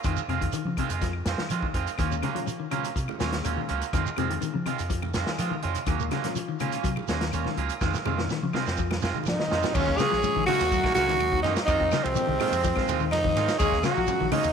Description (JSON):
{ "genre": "afrobeat", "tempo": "124 BPM", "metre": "4/4", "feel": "straight", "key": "Eb dorian", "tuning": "A4 = 440 Hz", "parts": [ { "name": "semi-hollow electric guitar", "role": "arpeggios", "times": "0.0-14.5 s", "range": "C3 to Gb3", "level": "-33 LUFS", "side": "left 12 dB", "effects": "none" }, { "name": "electric guitar at the edge of break-up", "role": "stabs", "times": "0.0-14.5 s", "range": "Eb3 to F4", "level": "-31 LUFS", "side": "right 11 dB", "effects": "spring reverb" }, { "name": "fingered electric bass", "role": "bass", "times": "0.0-14.5 s", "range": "Bb1 to F3", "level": "-31 LUFS", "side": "equal", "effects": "none" }, { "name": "vintage drum kit", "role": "drums", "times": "0.0-14.5 s", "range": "crash cymbal, hi-hat, kick drum, ride cymbal, snare drum", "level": "-32 LUFS", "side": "equal", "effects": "none" }, { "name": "shekere", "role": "percussion", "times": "0.0-14.5 s", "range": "none", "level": "-38 LUFS", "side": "right 9 dB", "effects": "none" }, { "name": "claves", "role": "percussion", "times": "0.1-14.4 s", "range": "none", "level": "-44 LUFS", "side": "left 15 dB", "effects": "none" }, { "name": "barky reed electric piano", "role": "accompaniment", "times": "2.0-14.5 s", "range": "Bb2 to Ab5", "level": "-38 LUFS", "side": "left 14 dB", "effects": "fast tremolo" }, { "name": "congas", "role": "percussion", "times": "2.2-14.4 s", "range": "none", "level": "-37 LUFS", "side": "right 12 dB", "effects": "none" }, { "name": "raspy tenor saxophone", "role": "melody", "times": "9.3-14.5 s", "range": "C4 to Ab4", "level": "-25 LUFS", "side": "right 1 dB", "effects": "none" }, { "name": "brilliant trumpet", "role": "second line", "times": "9.3-14.5 s", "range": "C4 to Db5", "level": "-32 LUFS", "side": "right 11 dB", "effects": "none" }, { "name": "muted trombone section", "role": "second line", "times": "9.3-14.5 s", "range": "C3 to Ab3", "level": "-35 LUFS", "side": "left 12 dB", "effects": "none" } ], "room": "moderate plate reverb, RT60 2.7 s", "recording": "1960s-style stereo with parts hard left and right", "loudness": "-24 LUFS", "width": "side -7 dB against mid", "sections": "0.0-9.7 A section; 9.7-14.5 B section", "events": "reed electric piano fill 4.9-5.9; drum fill 7.8-9.7", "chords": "0.1 Fm7; 2.0 Ebm9; 3.9 Fm7; 5.9 Ebm9; 7.8 Fm7; 9.7 Ebm9; 11.7 Fm7; 13.6 Ebm9" }